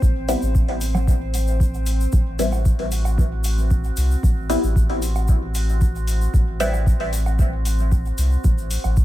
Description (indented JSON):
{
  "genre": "dub techno",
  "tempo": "114 BPM",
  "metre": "4/4",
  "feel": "straight",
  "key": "A dorian",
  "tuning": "A4 = 439 Hz",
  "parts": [
    { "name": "soft dub sub bass", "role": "bass", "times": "0.0-9.0 s", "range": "A1 to C2", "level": "-21 LUFS", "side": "equal", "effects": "tube saturation, sidechain pumping" },
    { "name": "electronic kick drum", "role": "drums", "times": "0.0-9.0 s", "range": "none", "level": "-20 LUFS", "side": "equal", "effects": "none" },
    { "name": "congas and woodblock", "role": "percussion", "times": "0.0-8.9 s", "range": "none", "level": "-32 LUFS", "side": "right 4 dB", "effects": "sidechain pumping on perc, dub echo" },
    { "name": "egg shaker", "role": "percussion", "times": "0.0-9.0 s", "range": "none", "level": "-35 LUFS", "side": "left 3 dB", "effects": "none" },
    { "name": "drifting glass-harmonics texture", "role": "texture", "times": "0.0-9.0 s", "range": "C4 to C5", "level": "-32 LUFS", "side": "right 2 dB", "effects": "chorus, built-in reverb, sidechain pumping" },
    { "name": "filtered dub chord stab", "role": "stabs", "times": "0.3-6.7 s", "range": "G3 to E4", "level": "-26 LUFS", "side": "left 1 dB", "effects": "phaser, dub echo" },
    { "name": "electronic hi-hat", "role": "drums", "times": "0.3-8.8 s", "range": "none", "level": "-35 LUFS", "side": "left 2 dB", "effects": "none" }
  ],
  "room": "little or no reverb",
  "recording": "none",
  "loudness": "-18 LUFS",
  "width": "side -15 dB against mid",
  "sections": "0.0-9.0 A section",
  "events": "none",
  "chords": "0.0 Am",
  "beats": "| 0.02 0.55 1.07 1.60 | 2.13 2.65 3.18 3.71 | 4.23 4.76 5.29 5.81 | 6.34 6.87 7.39 7.92 | 8.44 8.97"
}